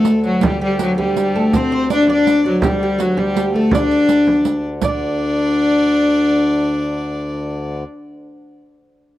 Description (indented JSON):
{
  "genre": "medieval dance",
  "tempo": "109 BPM (dotted quarters)",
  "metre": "6/8",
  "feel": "straight",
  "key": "D mixolydian",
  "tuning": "A4 = 440 Hz",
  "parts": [
    { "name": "rich viola da gamba", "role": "melody", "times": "0.0-7.8 s", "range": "F#3 to D4", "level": "-16 LUFS", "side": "left 1 dB", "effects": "none" },
    { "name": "oud", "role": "second line", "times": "0.0-7.8 s", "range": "F#4 to E5", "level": "-24 LUFS", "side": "right 6 dB", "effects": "none" },
    { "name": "warm fiddle", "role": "second line", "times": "0.0-7.8 s", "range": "F#4 to D5", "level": "-27 LUFS", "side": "left 1 dB", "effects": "none" },
    { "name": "pedal harmonium", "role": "drone", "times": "0.0-7.8 s", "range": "D2", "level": "-26 LUFS", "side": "left 1 dB", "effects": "none" },
    { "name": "riq", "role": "percussion", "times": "0.0-5.0 s", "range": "none", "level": "-25 LUFS", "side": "right 8 dB", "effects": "none" },
    { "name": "frame drum", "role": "percussion", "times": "0.4-5.0 s", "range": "none", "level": "-21 LUFS", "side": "right 2 dB", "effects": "none" }
  ],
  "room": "small room ambience",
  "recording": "dry, close 1970s-style studio recording",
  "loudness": "-14 LUFS",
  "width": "side -14 dB against mid",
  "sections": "0.0-4.8 A section; 4.8-7.0 B section",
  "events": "none",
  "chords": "none"
}